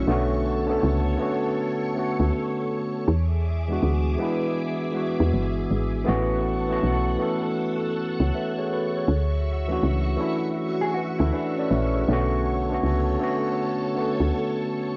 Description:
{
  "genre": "hip hop",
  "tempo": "80 BPM",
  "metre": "4/4",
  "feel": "swing 65% on 16ths",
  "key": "unclear",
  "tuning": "A4 = 440 Hz",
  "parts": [
    { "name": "mellow electric guitar", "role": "second line", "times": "0.0, 10.8-12.0 s", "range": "C#4 to G#4", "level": "-33 LUFS", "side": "equal", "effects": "low-pass filter, cassette tape, tape echo" },
    { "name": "tine electric piano", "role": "accompaniment", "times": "0.0-15.0 s", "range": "D3 to F#5", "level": "-27 LUFS", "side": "equal", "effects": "cassette tape, low-pass filter" },
    { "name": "string machine, full ensemble", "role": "sustained chords", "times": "0.0-15.0 s", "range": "F#4 to D6", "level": "-36 LUFS", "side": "equal", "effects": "phaser, ensemble chorus, low-pass filter, cassette tape" },
    { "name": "woody FM bass", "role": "bass", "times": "0.0-14.3 s", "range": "G1 to E2", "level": "-26 LUFS", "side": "equal", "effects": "none" }
  ],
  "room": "light reverb",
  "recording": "home recording on cassette, nothing above 7.4 kHz",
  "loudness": "-25 LUFS",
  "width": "mono",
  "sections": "0.0-15.0 A section",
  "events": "none",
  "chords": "0.1 Bm9; 3.1 E7; 6.1 A6; 9.1 Dmaj9; 12.1 Bm9",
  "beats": "| 0.07 0.82 1.57 2.32 | 3.07 3.82 4.57 5.32 | 6.07 6.82 7.57 8.32 | 9.07 9.82 10.57 11.32 | 12.07 12.82 13.57 14.32"
}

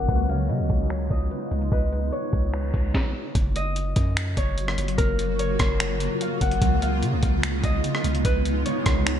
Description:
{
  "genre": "hip hop, atmospheric cloud-rap",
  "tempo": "147 BPM",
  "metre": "4/4",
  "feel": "half-time",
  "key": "F# major",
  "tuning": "A4 = 440 Hz",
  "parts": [
    { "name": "Celtic harp", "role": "melody", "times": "0.0-9.2 s", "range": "A#4 to F#5", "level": "-30 LUFS", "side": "left 3 dB", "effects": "digital delay" },
    { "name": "granular cloud pad", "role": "sustained chords", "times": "0.0-9.2 s", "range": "C#3 to F#4", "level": "-28 LUFS", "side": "right 1 dB", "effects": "built-in reverb, wide subtle chorus" },
    { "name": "mellow electric guitar", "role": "arpeggios", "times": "0.0-3.4 s", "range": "B4 to D#5", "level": "-36 LUFS", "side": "left 3 dB", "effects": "spring reverb, digital delay" },
    { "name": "long sustained 808-style bass", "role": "bass", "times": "0.0-9.2 s", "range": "F#1 to C#3", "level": "-26 LUFS", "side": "equal", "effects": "none" },
    { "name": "breakbeat sampler-style drum kit", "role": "drums", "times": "0.1-9.2 s", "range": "finger snaps, hi-hat, kick drum, rim click, snare drum", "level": "-24 LUFS", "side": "equal", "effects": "vintage 12-bit sampler grit, gated reverb" }
  ],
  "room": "little or no reverb",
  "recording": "bright 1980s-style digital production, low-pass filter",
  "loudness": "-21 LUFS",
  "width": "side -9 dB against mid",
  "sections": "0.0-3.4 A section; 3.4-9.2 B section",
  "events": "filter sweep 0.0-3.4",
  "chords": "0.1 C#9; 3.4 F#maj7; 6.6 C#9",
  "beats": "| 0.09 0.49 0.90 1.31 | 1.72 2.13 2.54 2.94 | 3.35 3.76 4.17 4.58 | 4.98 5.39 5.80 6.21 | 6.62 7.03 7.43 7.84 | 8.25 8.66 9.06"
}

